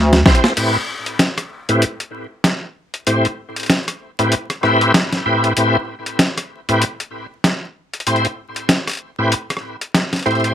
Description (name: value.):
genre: glitch hop.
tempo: 96 BPM.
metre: 4/4.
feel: swing 58% on 16ths.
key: A minor.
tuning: A4 = 440 Hz.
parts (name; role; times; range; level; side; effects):
boom bap sampler-style drum kit; drums; 0.1-10.5 s; crash cymbal, hi-hat, rim click, snare drum; -17 LUFS; equal; none.
bright tonewheel organ; stabs; 0.3-10.5 s; A2 to C5; -16 LUFS; equal; chorus vibrato, slow rotary speaker, vintage 12-bit sampler grit, sidechain pumping, low-pass filter, digital delay.
room: moderate small room reverb, RT60 0.5 s.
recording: vinyl crackle.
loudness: -16 LUFS.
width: side -10 dB against mid.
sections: 0.6-10.5 A section.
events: drum fill 0.0-0.6; filter sweep on tonewheel organ 0.6-10.5.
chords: 0.0 Am7 (rootless); 0.6 Am9.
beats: | 0.57 1.20 1.82 2.44 | 3.07 3.69 4.32 4.95 | 5.57 6.20 6.82 7.45 | 8.07 8.70 9.32 9.95.